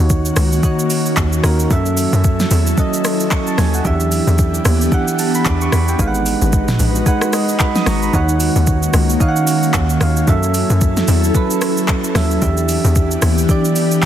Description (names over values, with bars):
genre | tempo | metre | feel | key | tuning
amapiano | 112 BPM | 4/4 | swing 58% on 16ths | unclear | A4 = 440 Hz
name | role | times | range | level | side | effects
soft electric-piano-like synth keys | accompaniment | 0.0-14.1 s | Eb3 to Eb6 | -18 LUFS | right 2 dB | chorus
ethereal airy pad | sustained chords | 0.1-14.1 s | Eb3 to Cb5 | -21 LUFS | left 2 dB | ensemble chorus, built-in reverb
hollow log drum bass | bass | 0.0-14.1 s | Ab1 to Gb2 | -16 LUFS | equal | none
smooth R&B drum kit | drums | 0.1-14.1 s | handclaps, hi-hat, kick drum, rim click, shaker, snare drum, toms | -18 LUFS | equal | overdrive
room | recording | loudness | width
light reverb | dense, heavily limited modern master | -13 LUFS | side -10 dB against mid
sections
0.0-14.1 A section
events
synth keys fill 7.1-8.1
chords
0.0 Ebm7; 1.7 Gbm7; 3.8 Em7; 6.0 Abm7; 8.1 Ebm7; 10.3 Gbm7; 12.4 Em7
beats
0.10 0.63 1.17 | 1.71 2.24 2.78 3.31 | 3.85 4.38 4.92 5.46 | 5.99 6.53 7.06 7.60 | 8.13 8.67 9.21 9.74 | 10.28 10.81 11.35 11.88 | 12.42 12.96 13.49 14.03